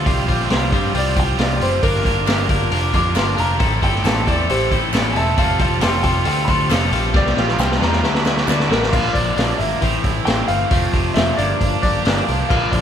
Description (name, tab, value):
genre	indie rock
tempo	135 BPM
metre	4/4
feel	straight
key	G dorian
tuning	A4 = 440 Hz
part	biting overdriven guitar	riff	0.0-12.8 s	F2 to G4	-23 LUFS	right 7 dB	none
part	twangy electric guitar	riff	0.0-12.8 s	E3 to Bb4	-23 LUFS	left 7 dB	none
part	picked electric bass	bass	0.0-12.8 s	E1 to G2	-22 LUFS	equal	none
part	vintage drum kit	drums	0.1-12.8 s	crash cymbal, hi-hat, kick drum, snare drum	-20 LUFS	equal	none
part	warm upright piano	melody	1.0-12.8 s	G4 to D6	-23 LUFS	left 1 dB	none
part	group handclap	percussion	2.3-8.6 s	none	-34 LUFS	right 3 dB	none
room	light reverb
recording	band playing live in one room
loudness	-15 LUFS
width	side -9 dB against mid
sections	0.0-8.9 A section; 8.9-12.8 B section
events	upright piano solo 0.0-8.9; drum fill 7.1-8.9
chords	0.1 Csus4; 1.8 Gm7; 3.6 Am; 5.4 Fadd9; 7.1 Csus4; 8.0 Dadd9; 8.9 Bb; 9.8 Am; 10.7 F; 11.4 Gm7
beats	| 0.06 0.50 0.95 1.39 | 1.83 2.27 2.71 3.16 | 3.60 4.04 4.49 4.93 | 5.37 5.82 6.26 6.71 | 7.15 7.59 8.04 8.48 | 8.93 9.37 9.82 10.27 | 10.71 11.16 11.61 12.05 | 12.50